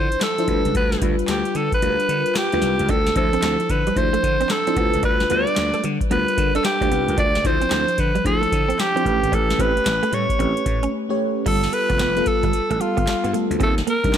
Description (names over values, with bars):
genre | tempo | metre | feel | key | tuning
R&B, new jack swing | 112 BPM | 4/4 | swing 64% on 16ths | unclear | A4 = 440 Hz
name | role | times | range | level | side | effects
raspy alto saxophone | melody | 0.0-14.2 s | F4 to D5 | -21 LUFS | equal | none
FM electric piano with soft pad layer | accompaniment | 0.0-14.2 s | F3 to C#5 | -24 LUFS | left 1 dB | chorus, phaser
gritty slap bass | bass | 0.0-14.2 s | F1 to D3 | -25 LUFS | equal | overdrive
booming analog drum machine | drums | 0.1-14.2 s | crash cymbal, handclaps, hi-hat, kick drum, snare drum | -24 LUFS | equal | overdrive
direct-recorded clean electric guitar | riff | 2.9-14.2 s | G3 to D4 | -28 LUFS | right 6 dB | ensemble chorus
room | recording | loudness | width
light reverb, digital ambience | none | -17 LUFS | side -9 dB against mid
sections
0.0-11.5 A section; 11.5-14.2 B section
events
kick muted 1.8-2.9; break 10.9-11.5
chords
0.5 G7; 2.9 Dm9; 4.8 G7; 7.2 Dm9; 9.1 A9; 11.5 G9; 13.6 Ebmaj7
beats
0.21 | 0.75 1.28 1.82 2.35 | 2.89 3.43 3.96 4.50 | 5.03 5.57 6.10 6.64 | 7.18 7.71 8.25 8.78 | 9.32 9.85 10.39 10.93 | 11.46 12.00 12.53 13.07 | 13.60 14.14